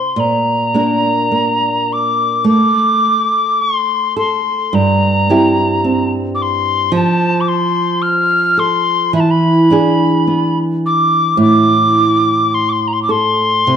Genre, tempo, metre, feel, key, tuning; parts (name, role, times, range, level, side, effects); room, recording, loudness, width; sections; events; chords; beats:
celtic folk, Celtic slow air; 53 BPM; 4/4; rubato; A4 = 438 Hz
reedy wooden whistle; melody; 0.0-13.8 s; A5 to F6; -14 LUFS; left 2 dB
nylon-string guitar; accompaniment; 0.0-13.8 s; G2 to C5; -15 LUFS; right 2 dB
moderate recital hall reverb, RT60 1.7 s; dark, warm production; -11 LUFS; side -8 dB against mid
0.0-13.8 A section
0.2 Bb; 2.5 N.C.; 4.7 C/G; 6.9 F; 9.1 E7; 11.4 N.C.
| 0.17 1.33 2.47 3.59 | 4.72 5.83 6.92 8.02 | 9.14 10.27 11.39 12.53 | 13.68